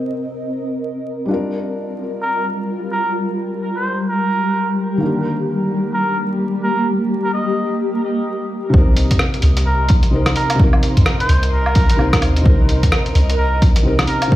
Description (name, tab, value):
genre	future garage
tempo	129 BPM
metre	4/4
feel	swing 61% on 16ths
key	C minor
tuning	A4 = 440 Hz
part	felt-muted upright piano	accompaniment	0.0-14.4 s	C3 to Bb4	-23 LUFS	left 1 dB	sidechain pumping, tape echo
part	granular cloud pad	sustained chords	0.0-14.4 s	G3 to C6	-22 LUFS	equal	built-in reverb, sidechain pumping
part	trumpet with cup mute	melody	2.2-14.3 s	Bb4 to Eb5	-23 LUFS	right 1 dB	vintage 12-bit sampler grit, tape echo
part	soft 808-style bass	bass	8.7-14.1 s	C2 to F2	-16 LUFS	equal	sidechain pumping
part	electronic kick drum	drums	8.7-14.4 s	none	-14 LUFS	equal	overdrive, studio reverb
part	lo-fi sampler-style drum kit	drums	9.0-14.3 s	hi-hat, rim click, woodblock	-21 LUFS	equal	low-pass filter on hats, studio reverb, low-pass filter on snare, low-pass filter on perc
room	light reverb, digital ambience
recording	played on a big sound system in a bare room, large studio reverb, vinyl crackle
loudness	-15 LUFS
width	side -14 dB against mid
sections	0.0-8.7 A section; 8.7-14.4 B section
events	none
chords	0.0 Cm7; 1.3 Gm7; 5.0 Ebmaj7; 8.7 Cm7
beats	0.36 0.83 | 1.29 1.76 2.22 2.69 | 3.15 3.62 4.08 4.55 | 5.01 5.48 5.94 6.41 | 6.88 7.34 7.80 8.27 | 8.73 9.20 9.66 10.13 | 10.60 11.06 11.53 11.99 | 12.46 12.92 13.39 13.85 | 14.32